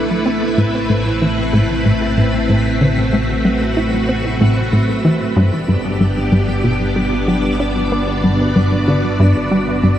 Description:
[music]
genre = ambient, sequencer-driven space music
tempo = 94 BPM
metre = 4/4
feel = straight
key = A dorian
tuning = A4 = 440 Hz
[part]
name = string machine, full ensemble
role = sustained chords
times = 0.0-10.0 s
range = A3 to D5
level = -17 LUFS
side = equal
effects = ensemble chorus
[part]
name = plucky analog bass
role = riff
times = 0.0-10.0 s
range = G2 to E4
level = -16 LUFS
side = equal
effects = analog chorus, analog delay
[part]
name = analog drone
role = bass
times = 0.0-10.0 s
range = G1 to B1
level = -22 LUFS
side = equal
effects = chorus
[part]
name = twinkling granular texture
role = texture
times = 0.0-10.0 s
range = E4 to E5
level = -35 LUFS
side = equal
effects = built-in reverb
[sound]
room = moderate lush hall reverb, RT60 3.0 s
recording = none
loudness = -13 LUFS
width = side -11 dB against mid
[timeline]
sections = 0.0-10.0 A section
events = fade-in on synth texture 0.0-10.0; filter sweep on analog synth bass 0.0-10.0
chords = 0.3 Amadd9; 5.4 G

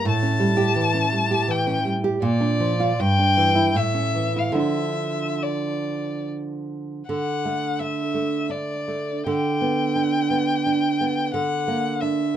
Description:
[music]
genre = romantic duo for violin and classical guitar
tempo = 69-90 BPM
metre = 3/4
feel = rubato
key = D minor, D major from 7.1 s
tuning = A4 = 440 Hz
[part]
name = warm violin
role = melody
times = 0.0-12.4 s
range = D5 to A5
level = -24 LUFS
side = left 3 dB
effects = none
[part]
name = nylon-string guitar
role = accompaniment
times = 0.0-12.4 s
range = G2 to G4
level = -22 LUFS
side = right 2 dB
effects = none
[sound]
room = moderate studio ambience, RT60 0.5 s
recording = minimal, uncompressed stereo recording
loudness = -20 LUFS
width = side -10 dB against mid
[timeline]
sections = 0.0-7.1 A section; 7.1-12.4 B section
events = none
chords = 0.1 A7; 2.2 Bb; 3.0 Em7/G; 3.8 A; 4.6 Dm; 7.1 D; 9.3 G/D; 11.3 Daug

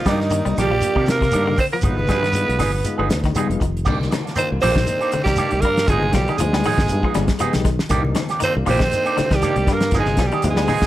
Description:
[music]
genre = afrobeat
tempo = 118 BPM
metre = 4/4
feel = swing 55% on 16ths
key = C minor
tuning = A4 = 440 Hz
[part]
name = breathy alto saxophone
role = melody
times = 0.0-10.9 s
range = Eb4 to C5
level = -21 LUFS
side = right 3 dB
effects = none
[part]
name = raspy tenor saxophone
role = second line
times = 0.0-10.9 s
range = Eb3 to C4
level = -28 LUFS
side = right 3 dB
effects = none
[part]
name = combo organ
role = accompaniment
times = 0.0-10.7 s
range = Ab3 to G4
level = -29 LUFS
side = left 4 dB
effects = none
[part]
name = electric guitar at the edge of break-up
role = arpeggios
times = 0.0-10.9 s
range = C3 to G3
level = -27 LUFS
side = left 6 dB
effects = wide subtle chorus
[part]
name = shekere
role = percussion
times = 0.0-10.8 s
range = none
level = -30 LUFS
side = right 1 dB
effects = none
[part]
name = electric guitar with an envelope filter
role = stabs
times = 0.1-10.8 s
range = Eb3 to Ab4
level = -26 LUFS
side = right 6 dB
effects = none
[part]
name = fingered electric bass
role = bass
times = 0.1-10.9 s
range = F1 to C3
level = -22 LUFS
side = equal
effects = none
[part]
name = warm soul drum kit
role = drums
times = 0.1-10.9 s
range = crash cymbal, hi-hat, kick drum, snare drum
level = -23 LUFS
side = equal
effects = none
[part]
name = claves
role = percussion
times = 0.1-10.8 s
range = none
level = -39 LUFS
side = left 3 dB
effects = none
[part]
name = congas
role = percussion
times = 0.1-10.9 s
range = none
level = -28 LUFS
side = left 2 dB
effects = none
[sound]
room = light reverb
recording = none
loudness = -16 LUFS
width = side -14 dB against mid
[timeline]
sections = 0.0-3.9 A section; 3.9-10.9 B section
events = none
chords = 0.0 Cm9; 1.8 G7b9b13; 3.9 Cm9; 5.9 G7b9b13; 7.9 Cm9; 9.9 G7b9b13

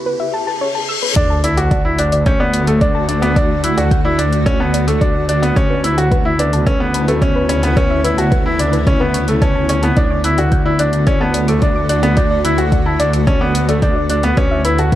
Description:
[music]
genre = piano and strings electronica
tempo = 109 BPM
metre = 4/4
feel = straight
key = D major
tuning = A4 = 441 Hz
[part]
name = riser, reverse cymbal and sub drop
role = sound effects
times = 0.0-3.4 s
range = none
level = -22 LUFS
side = left 1 dB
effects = none
[part]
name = soft round pluck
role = arpeggios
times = 0.1-15.0 s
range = B4 to G6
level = -24 LUFS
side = left 2 dB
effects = chorus, sidechain pumping, tape echo
[part]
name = granular cloud pad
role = sustained chords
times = 1.9-15.0 s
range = C#3 to F#4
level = -22 LUFS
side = equal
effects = built-in reverb, sidechain pumping
[part]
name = bright upright piano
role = riff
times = 1.2-15.0 s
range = A3 to F#4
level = -17 LUFS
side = equal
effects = tape echo
[part]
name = clear studio double bass section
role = bass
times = 1.2-15.0 s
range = D2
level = -18 LUFS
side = equal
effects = sidechain pumping
[part]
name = electronic hi-hat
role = drums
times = 1.2-15.0 s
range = none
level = -27 LUFS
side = left 2 dB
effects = none
[part]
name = electronic kick drum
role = drums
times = 1.2-15.0 s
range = none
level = -16 LUFS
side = equal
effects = none
[sound]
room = light reverb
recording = dark, warm production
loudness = -12 LUFS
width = side -13 dB against mid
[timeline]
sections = 0.0-1.2 A section; 1.2-15.0 B section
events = break 0.0-1.2; build-up 0.0-1.2; riser 0.0-1.2; reverse cymbal 0.1-1.2; drop 1.2-15.0; impact 1.2-3.4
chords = 0.0 Aadd9; 1.2 D; 5.6 Aadd9/D; 10.0 D; 14.4 Aadd9/D

